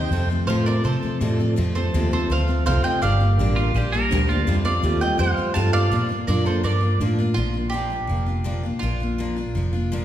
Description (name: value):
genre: honky-tonk and classic country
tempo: 166 BPM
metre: 4/4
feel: straight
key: Bb major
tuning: A4 = 440 Hz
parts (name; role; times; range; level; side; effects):
- mandolin; melody; 0.0-10.0 s; F4 to A5; -26 LUFS; right 3 dB; none
- mellow tonewheel organ; accompaniment; 0.0-7.4 s; D4 to Eb5; -29 LUFS; right 3 dB; slow rotary speaker
- picked steel-string acoustic guitar; accompaniment; 0.0-10.0 s; F2 to A4; -27 LUFS; left 3 dB; none
- vintage muted fingered electric bass; bass; 0.0-10.0 s; F1 to C3; -22 LUFS; equal; none
- twangy electric guitar; second line; 3.6-4.6 s; F4 to Bb4; -27 LUFS; right 3 dB; tape echo
room: wet recital hall reverb, RT60 1.6 s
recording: heard from further back in the room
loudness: -19 LUFS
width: side -11 dB against mid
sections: 0.0-7.4 A section; 7.4-10.0 B section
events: none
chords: 0.1 F; 3.0 Gm; 4.5 Fadd9; 5.9 Bb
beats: | 0.12 0.48 0.84 1.21 | 1.57 1.93 2.29 2.66 | 3.02 3.38 3.74 4.11 | 4.47 4.83 5.19 5.55 | 5.92 6.28 6.64 7.00 | 7.37 7.73 8.09 8.46 | 8.82 9.18 9.54 9.91